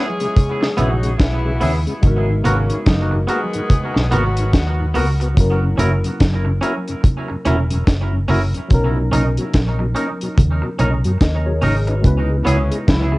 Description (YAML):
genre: lovers rock reggae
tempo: 72 BPM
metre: 4/4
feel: swing 60% on 16ths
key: C# dorian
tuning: A4 = 439 Hz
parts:
  - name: warm horn section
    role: second line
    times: 0.0-4.9, 12.5-13.2 s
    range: G#2 to G#4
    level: -25 LUFS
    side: left 1 dB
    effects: cassette tape, tape echo, plate reverb
  - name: mellow tonewheel organ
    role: accompaniment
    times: 0.0-13.2 s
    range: F#2 to F#4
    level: -27 LUFS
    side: left 2 dB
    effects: overdrive, slow rotary speaker, cassette tape, tape echo, plate reverb
  - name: tine electric piano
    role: accompaniment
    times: 0.0-13.2 s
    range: F#3 to D#5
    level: -26 LUFS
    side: left 1 dB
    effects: ensemble chorus, cassette tape, plate reverb
  - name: twangy electric guitar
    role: stabs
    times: 0.0-13.2 s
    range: B3 to A#4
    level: -24 LUFS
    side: right 2 dB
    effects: cassette tape, tape echo, plate reverb
  - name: deep reggae drum kit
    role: drums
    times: 0.2-13.1 s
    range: hi-hat, kick drum, snare drum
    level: -16 LUFS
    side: equal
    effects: cassette tape
  - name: congas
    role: percussion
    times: 0.4-13.1 s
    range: none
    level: -25 LUFS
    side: right 2 dB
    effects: none
  - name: vintage muted fingered electric bass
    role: bass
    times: 0.8-13.2 s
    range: E1 to F#2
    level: -18 LUFS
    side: equal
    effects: none
room: light reverb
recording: home recording on cassette, nothing above 10.9 kHz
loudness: -15 LUFS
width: side -20 dB against mid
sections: 0.0-13.2 A section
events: none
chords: 0.0 C#m7; 2.0 G#m9; 5.4 F#7; 8.7 Bmaj9; 12.0 C#m7